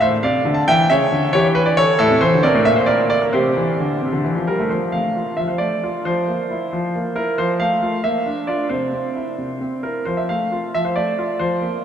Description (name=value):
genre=classical-period piano sonatina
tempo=90 BPM (dotted quarters)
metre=6/8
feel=straight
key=F major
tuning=A4 = 439 Hz
part: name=clear concert grand piano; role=solo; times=0.0-11.8 s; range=A2 to A5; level=-16 LUFS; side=equal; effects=none
room=wet cathedral reverb, RT60 5.9 s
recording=in a vast, echoing space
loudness=-16 LUFS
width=side -8 dB against mid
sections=0.0-4.7 A section; 4.7-11.8 B section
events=none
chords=0.0 D5; 0.7 C#dim; 2.0 Am; 2.7 N.C.; 3.3 C5; 4.0 C; 4.7 F; 6.1 C7/F; 7.4 F; 8.0 Bb; 8.7 C; 10.1 F